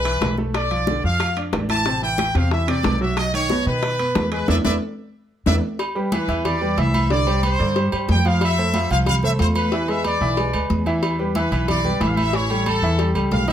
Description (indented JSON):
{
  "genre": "latin, salsa",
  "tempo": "183 BPM",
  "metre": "4/4",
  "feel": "straight",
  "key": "unclear",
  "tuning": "A4 = 442 Hz",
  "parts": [
    { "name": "bright trumpet section", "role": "melody", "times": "0.0-13.5 s", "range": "A4 to A5", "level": "-24 LUFS", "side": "left 1 dB", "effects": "none" },
    { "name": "bright upright piano", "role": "accompaniment", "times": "0.0-13.5 s", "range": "B2 to F5", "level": "-24 LUFS", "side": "right 1 dB", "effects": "none" },
    { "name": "upright bass", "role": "bass", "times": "0.0-13.5 s", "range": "A1 to B2", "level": "-22 LUFS", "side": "equal", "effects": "none" },
    { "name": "congas", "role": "percussion", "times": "0.1-13.5 s", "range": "none", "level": "-27 LUFS", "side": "equal", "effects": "none" },
    { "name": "timbales and agogo bells", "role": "percussion", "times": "0.1-13.5 s", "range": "none", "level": "-28 LUFS", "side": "right 3 dB", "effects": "none" },
    { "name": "bongos and cowbell", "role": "percussion", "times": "0.2-13.5 s", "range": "none", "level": "-28 LUFS", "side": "left 6 dB", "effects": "none" }
  ],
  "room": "light reverb",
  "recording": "none",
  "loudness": "-18 LUFS",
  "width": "side -10 dB against mid",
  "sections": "0.0-5.8 A section; 5.8-13.5 B section",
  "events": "band accent 4.5-5.8; drum fill 5.0-5.8",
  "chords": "0.0 E5; 0.5 Bm7b5; 1.9 Am; 3.2 B; 4.5 E5; 5.8 Em7; 7.1 Csus2; 8.4 Fmaj7; 9.7 E7; 11.0 Em7; 12.3 A7",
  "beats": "0.22 | 0.55 0.88 1.20 1.53 | 1.86 2.19 2.52 2.84 | 3.17 3.50 3.83 4.16 | 4.48 4.81 5.14 5.47 | 5.79 6.12 6.45 6.78 | 7.10 7.43 7.76 8.09 | 8.41 8.74 9.07 9.39 | 9.72 10.05 10.37 10.70 | 11.03 11.35 11.68 12.01 | 12.33 12.66 12.99 13.31"
}